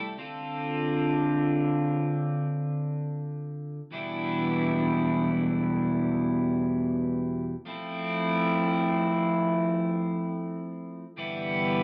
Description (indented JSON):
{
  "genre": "rock",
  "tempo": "free time",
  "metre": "none",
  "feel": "none",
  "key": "unclear",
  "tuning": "A4 = 440 Hz",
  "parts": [
    { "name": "twelve-string electric guitar", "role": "solo", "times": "0.0-11.8 s", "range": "E2 to A4", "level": "-28 LUFS", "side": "equal", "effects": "cassette tape, analog delay" }
  ],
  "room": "moderate studio reverb, RT60 0.5 s",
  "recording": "home recording on cassette, small speaker sound",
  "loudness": "-28 LUFS",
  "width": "mono",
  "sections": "0.2-11.8 A section",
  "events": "none",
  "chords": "0.2 Dm7; 3.9 Em7; 7.7 Fmaj7; 11.2 G6"
}